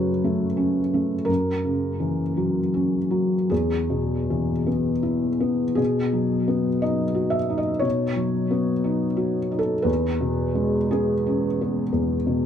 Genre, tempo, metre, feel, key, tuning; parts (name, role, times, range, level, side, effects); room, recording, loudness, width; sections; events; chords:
neoclassical minimalist piano; 51-60 BPM; 4/4; rubato; A4 = 440 Hz
felt-muted upright piano; solo; 0.0-12.5 s; E2 to E5; -21 LUFS; left 1 dB; tape echo
moderate studio ambience, RT60 0.5 s; dark, warm production; -21 LUFS; side -8 dB against mid
0.0-5.8 A section; 5.8-12.5 A section
0.0 F#m; 1.3 F#7; 3.5 E; 5.8 B; 9.9 E6